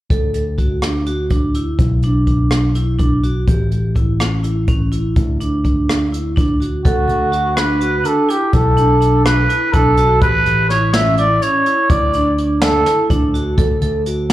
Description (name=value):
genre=progressive instrumental, band music in an uneven meter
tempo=249 BPM (eighths)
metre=7/8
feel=straight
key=D major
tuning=A4 = 440 Hz
part: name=vibraphone with hard mallets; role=arpeggios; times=0.1-14.3 s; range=C#4 to A4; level=-20 LUFS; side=right 2 dB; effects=none
part: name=picked electric bass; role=bass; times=0.1-14.3 s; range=A1 to D2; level=-18 LUFS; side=left 1 dB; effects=none
part: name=jazz brush drum kit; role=drums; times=0.1-14.3 s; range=hi-hat, kick drum, rim click, snare drum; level=-18 LUFS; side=equal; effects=none
part: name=mellow trumpet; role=melody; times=6.9-13.1 s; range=F#4 to E5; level=-16 LUFS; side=right 1 dB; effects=slapback echo, tape echo
room=light reverb, small room ambience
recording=live gig heard through the venue's PA, club ambience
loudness=-13 LUFS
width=side -14 dB against mid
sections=0.1-6.9 A section; 6.9-14.3 B section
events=none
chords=0.1 D; 1.8 Bm; 3.5 A7; 5.2 N.C.; 6.9 D; 8.5 Bm; 10.2 A7; 11.9 D